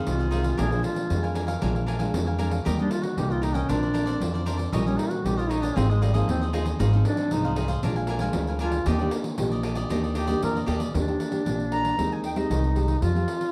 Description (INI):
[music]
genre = samba and choro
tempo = 116 BPM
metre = 4/4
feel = straight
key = Eb major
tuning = A4 = 439 Hz
[part]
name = cavaquinho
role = accompaniment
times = 0.0-10.9 s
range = D4 to Ab5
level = -36 LUFS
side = equal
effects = none
[part]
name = nylon-string guitar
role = accompaniment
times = 0.0-13.5 s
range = F2 to G4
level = -32 LUFS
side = equal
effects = none
[part]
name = warm duduk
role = second line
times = 0.1-13.5 s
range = G3 to Bb4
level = -32 LUFS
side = equal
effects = none
[part]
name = upright bass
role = bass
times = 0.1-13.2 s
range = Ab1 to F2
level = -28 LUFS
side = equal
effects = none
[part]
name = pandeiro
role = percussion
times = 0.1-13.5 s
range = none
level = -34 LUFS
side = equal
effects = none
[part]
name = jazz flute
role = melody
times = 11.7-12.8 s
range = Eb5 to Bb5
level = -31 LUFS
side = equal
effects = none
[sound]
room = light reverb, studio reverb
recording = dry, close 1970s-style studio recording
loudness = -25 LUFS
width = mono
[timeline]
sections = 0.0-10.9 A section; 10.9-13.5 B section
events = duduk solo 0.0-10.9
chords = 0.0 Fm7; 0.6 Bb7; 2.7 Eb; 3.7 Bbadd9; 4.7 Eb7/Bb; 5.8 Ab6; 7.8 Bb7; 8.9 Ebmaj7; 12.0 Abmaj7/Eb